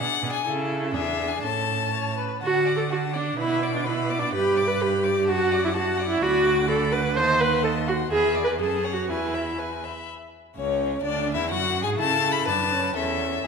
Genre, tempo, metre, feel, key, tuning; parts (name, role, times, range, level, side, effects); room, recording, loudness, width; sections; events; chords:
quick classical-period movement for string quartet; 126 BPM; 2/4; straight; D major; A4 = 440 Hz
clear violin; melody; 0.0-13.5 s; C#5 to D6; -28 LUFS; left 8 dB
clear violin; second line; 0.0-13.5 s; C#4 to F#5; -32 LUFS; left 3 dB
warm viola; accompaniment; 0.0-13.5 s; C#4 to B#4; -24 LUFS; right 1 dB
clear cello; bass; 0.0-13.5 s; C#2 to D3; -29 LUFS; right 5 dB
wet concert hall reverb, RT60 2.0 s; minimal, uncompressed stereo recording; -21 LUFS; side -5 dB against mid
0.0-2.4 A section; 2.4-10.1 B section; 10.1-13.5 A section
0.5 A/C#; 0.9 E7; 1.4 A; 2.4 D; 3.4 Bm; 4.3 G; 5.3 D/F#; 6.2 Bm/D; 7.2 D#dim7; 8.1 E7; 8.6 F#m; 9.1 E; 10.1 N.C.; 11.0 E9/D; 12.0 A/C#; 12.5 D/F#; 13.0 A/E